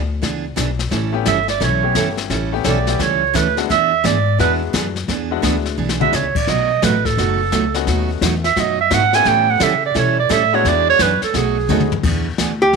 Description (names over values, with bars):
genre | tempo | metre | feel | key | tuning
country, western swing | 173 BPM | 4/4 | swing 64% on 8ths | E mixolydian | A4 = 440 Hz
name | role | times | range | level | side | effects
upright bass | bass | 0.0-12.8 s | F#1 to C#3 | -21 LUFS | left 3 dB | none
picked steel-string acoustic guitar | accompaniment | 0.2-12.5 s | B2 to A4 | -22 LUFS | right 9 dB | none
jazz brush drum kit | drums | 0.2-12.8 s | brushed snare drum, crash cymbal, hi-hat, kick drum, snare drum, toms | -23 LUFS | left 9 dB | none
bright upright piano | accompaniment | 1.1-11.9 s | G#3 to G4 | -24 LUFS | left 17 dB | none
mellow clarinet | second line | 1.3-12.0 s | G#4 to G#5 | -17 LUFS | right 10 dB | none
archtop guitar, miked and amplified | melody | 12.6-12.8 s | G4 | -10 LUFS | equal | none
room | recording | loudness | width
light reverb, studio ambience | 1960s-style stereo with parts hard left and right | -14 LUFS | side -4 dB against mid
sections
0.0-12.0 A section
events
clarinet solo 0.0-12.0; drum fill 5.8-6.1, 11.7-12.0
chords
0.0 E7; 0.9 A9; 3.7 E9; 6.5 B9; 9.3 A9; 10.7 E9; 11.3 B9; 12.0 E7